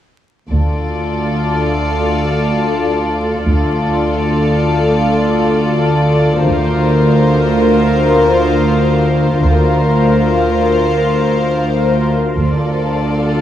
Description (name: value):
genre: cinematic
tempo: free time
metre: none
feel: none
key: D minor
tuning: A4 = 441 Hz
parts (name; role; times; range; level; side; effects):
- rich studio violin section; melody; 0.5-13.4 s; C5 to D5; -23 LUFS; left 4 dB; none
- warm symphonic violin section; second line; 0.5-13.4 s; F4 to Bb4; -17 LUFS; left 3 dB; none
- evolving wavetable pad; sustained chords; 1.3-13.4 s; A4 to F5; -21 LUFS; equal; ensemble chorus, built-in reverb, phaser
- dark symphonic double bass section; bass; 0.5-12.9 s; D2; -18 LUFS; right 1 dB; none
- rich symphonic cello section; bass; 0.5-13.4 s; D2; -15 LUFS; right 1 dB; none
room: wet concert hall reverb, RT60 1.8 s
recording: dark, warm production, vinyl crackle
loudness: -12 LUFS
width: side -11 dB against mid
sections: 0.5-13.4 A section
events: none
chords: 0.5 Dm; 6.4 Bbadd9/D; 12.4 Dm